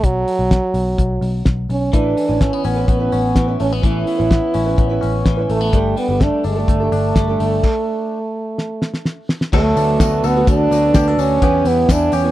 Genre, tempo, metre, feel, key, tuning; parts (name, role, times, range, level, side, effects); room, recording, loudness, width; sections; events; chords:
jangly indie pop; 126 BPM; 4/4; straight; A4 = 442 Hz
warm French horn; melody; 0.0-12.3 s; F#3 to E4; -18 LUFS; right 2 dB; tape echo
vintage muted picked electric bass; bass; 0.0-12.3 s; G1 to E2; -20 LUFS; left 1 dB
cloth-damped thuddy drum kit; drums; 0.0-12.2 s; crash cymbal, hi-hat, kick drum, ride cymbal, snare drum; -16 LUFS; left 1 dB
fingerpicked twelve-string acoustic guitar; accompaniment; 1.9-12.3 s; D3 to B4; -25 LUFS; right 6 dB
direct-recorded clean electric guitar; arpeggios; 1.9-12.3 s; E3 to A4; -24 LUFS; left 7 dB; wide subtle chorus
tambourine; percussion; 9.8-12.2 s; -36 LUFS; left 27 dB
little or no reverb; dry, close 1970s-style studio recording; -14 LUFS; side -14 dB against mid
0.0-9.5 A section; 9.5-12.3 B section
stop 7.6-9.5; drum fill 8.6-9.5
0.0 B5; 1.9 Aadd9; 5.7 Gsus2; 9.5 D6; 11.4 Em